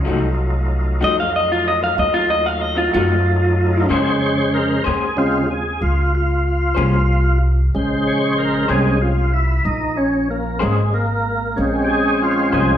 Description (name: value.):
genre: blues.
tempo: 63 BPM (dotted quarters).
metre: 12/8.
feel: straight.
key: Bb minor.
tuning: A4 = 440 Hz.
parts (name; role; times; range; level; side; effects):
tonewheel organ; sustained chords; 0.0-12.8 s; Db3 to Db5; -19 LUFS; equal; slow rotary speaker, overdrive, chorus vibrato.
upright bass; bass; 0.0-12.8 s; Ab1 to Gb2; -20 LUFS; equal; none.
electric guitar through a small old amp; accompaniment; 0.1-12.7 s; F3 to C5; -24 LUFS; left 5 dB; tremolo.
electric guitar through a small old amp; melody; 1.0-3.9 s; F4 to F5; -17 LUFS; equal; none.
room: wet large studio reverb, RT60 1.2 s.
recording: band playing live in one room.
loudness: -15 LUFS.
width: side -10 dB against mid.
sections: 0.0-3.9 A section; 3.9-12.8 A section.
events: clean electric guitar solo 0.0-3.9; tonewheel organ solo 3.9-12.8.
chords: 0.1 F7b9; 3.9 Bbm9.